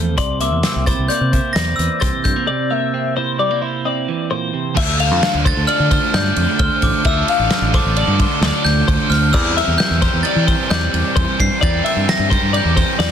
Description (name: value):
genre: math rock and midwest emo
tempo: 131 BPM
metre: 5/4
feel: straight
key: D minor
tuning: A4 = 440 Hz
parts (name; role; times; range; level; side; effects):
- twelve-string electric guitar; accompaniment; 0.0-4.8 s; F2 to E4; -22 LUFS; right 8 dB; spring reverb
- twelve-string electric guitar; arpeggios; 0.0-13.1 s; C5 to F5; -22 LUFS; left 6 dB; wide subtle chorus
- fingered electric bass; bass; 0.0-13.1 s; A1 to E3; -19 LUFS; equal; none
- glockenspiel with brass mallets; melody; 0.2-13.0 s; C6 to C7; -22 LUFS; left 1 dB; none
- loose indie drum kit; drums; 0.2-13.1 s; crash cymbal, hi-hat, kick drum, ride cymbal, snare drum; -19 LUFS; equal; none
- cranked stack guitar; riff; 4.8-13.1 s; D3 to Bb4; -22 LUFS; right 3 dB; overdrive
room: little or no reverb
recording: dense, heavily limited modern master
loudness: -14 LUFS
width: side -8 dB against mid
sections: 0.0-4.8 A section; 4.8-13.1 B section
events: break 2.5-4.8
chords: 0.2 C7; 4.8 Dm7; 9.3 C7/E